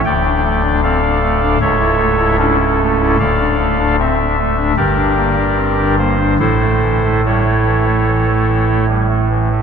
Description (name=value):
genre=classical, chorale-style piece for pipe organ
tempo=72-78 BPM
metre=4/4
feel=straight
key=D minor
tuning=A4 = 440 Hz
part: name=pipe organ, soft reed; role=solo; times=0.1-9.6 s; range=C#1 to G5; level=-12 LUFS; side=equal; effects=none
room=wet cathedral reverb, RT60 4.5 s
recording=dark, warm production, nothing above 7.5 kHz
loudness=-12 LUFS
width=side -6 dB against mid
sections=0.0-9.6 A section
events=none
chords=0.0 Dm; 1.6 A/C#; 3.2 Dm; 4.8 Gm; 6.4 A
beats=| 0.04 0.83 1.60 2.38 | 3.20 3.98 4.77 5.58 | 6.41 7.24 8.07 8.89